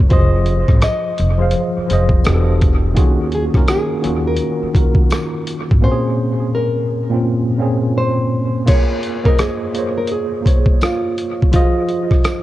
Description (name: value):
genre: lo-fi hip hop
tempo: 84 BPM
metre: 4/4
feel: swing 60% on 16ths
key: Bb minor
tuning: A4 = 441 Hz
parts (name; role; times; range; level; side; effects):
- tine electric piano; accompaniment; 0.0-12.4 s; Bb2 to F5; -19 LUFS; equal; overdrive, fast stereo tremolo, cassette tape, low-pass filter, dub echo
- upright bass; bass; 0.0-5.8 s; E1 to F2; -17 LUFS; equal; none
- boom bap sampler-style drum kit; drums; 0.0-12.4 s; crash cymbal, hi-hat, kick drum, rim click; -14 LUFS; equal; none
- nylon-string guitar; melody; 0.1-12.4 s; F4 to Eb5; -22 LUFS; equal; low-pass filter, dub echo
- tambourine; percussion; 0.8-12.4 s; none; -41 LUFS; left 4 dB; dub echo
room: small room reverb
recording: echo-heavy mix, cassette tape, lossy compression artefacts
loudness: -14 LUFS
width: side -15 dB against mid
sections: 0.0-8.7 A section; 8.7-12.4 B section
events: drums muted 5.8-8.7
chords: 0.1 Fm7; 2.3 Em11; 3.0 Ebm11; 5.8 Bbm9; 8.7 Bbm7; 11.5 Fm7